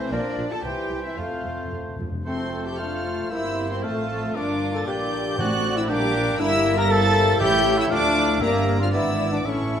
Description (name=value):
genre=quick classical-period movement for symphony orchestra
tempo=109-121 BPM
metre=2/4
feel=rubato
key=F major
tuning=A4 = 440 Hz
part: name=warm chamber violin section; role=melody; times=0.0-9.8 s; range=C5 to Bb6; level=-29 LUFS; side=equal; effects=none
part: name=mellow clarinet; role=second line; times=0.0-9.8 s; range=A3 to E5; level=-31 LUFS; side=equal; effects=none
part: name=warm chamber violin section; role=second line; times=0.0-9.8 s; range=B3 to A5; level=-34 LUFS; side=left 3 dB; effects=none
part: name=warm oboe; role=second line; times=0.0-9.8 s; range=Bb4 to G5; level=-32 LUFS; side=right 1 dB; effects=none
part: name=mellow bassoon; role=accompaniment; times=0.0-9.8 s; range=E3 to C4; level=-30 LUFS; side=equal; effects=none
part: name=warm French horn section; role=sustained chords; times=0.0-9.8 s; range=A3 to Bb4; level=-30 LUFS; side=left 4 dB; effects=none
part: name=dark chamber cello section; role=bass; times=0.0-9.8 s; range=D2 to A4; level=-33 LUFS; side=right 2 dB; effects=none
part: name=mellow hollow silver concert flute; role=second line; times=0.1-9.8 s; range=A4 to Bb5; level=-32 LUFS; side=left 1 dB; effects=none
part: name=dark chamber viola section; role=accompaniment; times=0.1-9.8 s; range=D3 to G4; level=-31 LUFS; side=equal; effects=none
part: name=dark chamber double bass section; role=bass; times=0.1-9.8 s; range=F1 to F2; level=-30 LUFS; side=right 1 dB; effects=none
part: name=timpani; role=percussion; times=1.2-2.2, 5.4-9.8 s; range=F2 to A2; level=-33 LUFS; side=equal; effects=none
part: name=warm trumpet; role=stabs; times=2.3-9.8 s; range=A3 to Bb4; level=-29 LUFS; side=right 2 dB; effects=none
room=wet scoring stage reverb, RT60 1.7 s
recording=none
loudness=-20 LUFS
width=side -8 dB against mid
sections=0.0-2.3 A section; 2.3-9.8 A section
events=timpani fill 1.2-2.3, 9.5-9.8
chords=0.1 Bb; 0.6 C; 1.2 F; 3.3 C7/G; 3.8 F/A; 4.4 Gm; 5.4 D7/A; 5.9 Gm/Bb; 6.4 Edim/G; 7.4 A7; 7.9 Dm; 8.4 Edim/G; 8.9 E7/G#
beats=| 0.12 0.64 | 1.18 1.72 | 2.27 2.80 | 3.32 3.84 | 4.36 4.88 | 5.39 5.90 | 6.40 6.90 | 7.41 7.91 | 8.41 8.93 | 9.46